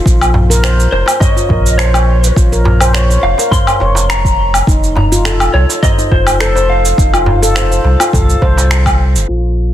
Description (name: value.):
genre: organic downtempo.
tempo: 104 BPM.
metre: 4/4.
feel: straight.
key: unclear.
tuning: A4 = 442 Hz.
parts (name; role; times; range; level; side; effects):
handpan; arpeggios; 0.0-9.4 s; Eb4 to Db5; -17 LUFS; left 1 dB; low-pass filter, digital delay.
warm sub bass; bass; 0.1-9.7 s; F1 to C2; -12 LUFS; equal; sidechain pumping.
electronic cabasa, woodblock and finger snaps; drums; 0.1-9.3 s; none; -16 LUFS; equal; overdrive, soft clipping on snare, low-pass filter on snare, low-pass filter on perc, low-pass filter on room.
electronic kick drum; drums; 0.1-9.0 s; none; -12 LUFS; equal; none.
darbuka; percussion; 0.3-8.7 s; none; -19 LUFS; right 1 dB; none.
electric slide guitar; melody; 0.9-8.7 s; C5 to C6; -18 LUFS; left 1 dB; tape echo.
room: light reverb, digital ambience.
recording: dense, heavily limited modern master, low-pass filter.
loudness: -9 LUFS.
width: side -12 dB against mid.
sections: 0.0-9.3 A section.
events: none.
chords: 0.1 Bbmadd9; 4.7 F.